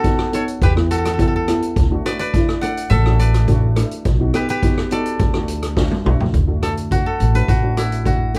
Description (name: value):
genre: calypso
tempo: 105 BPM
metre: 4/4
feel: straight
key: D major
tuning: A4 = 445 Hz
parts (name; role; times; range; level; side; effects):
- koto; melody; 0.0-8.4 s; E4 to F#5; -26 LUFS; equal; none
- steel pan; accompaniment; 0.0-8.4 s; A3 to A4; -26 LUFS; equal; none
- street-band drum kit; drums; 0.0-8.4 s; hi-hat, kick drum, rim click, snare drum, toms; -22 LUFS; equal; none
- upright bass; bass; 0.6-8.4 s; A1 to E2; -20 LUFS; equal; none
room: light reverb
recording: none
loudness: -18 LUFS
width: mono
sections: 0.0-6.3 A section; 6.3-8.4 B section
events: drum fill 5.8-6.3; koto solo 6.3-8.4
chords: 0.0 B7; 0.6 Em; 1.8 D; 4.1 B7; 5.2 D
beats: 0.05 0.62 1.19 | 1.77 2.34 2.91 3.48 | 4.06 4.63 5.20 5.78 | 6.35 6.92 7.49 8.06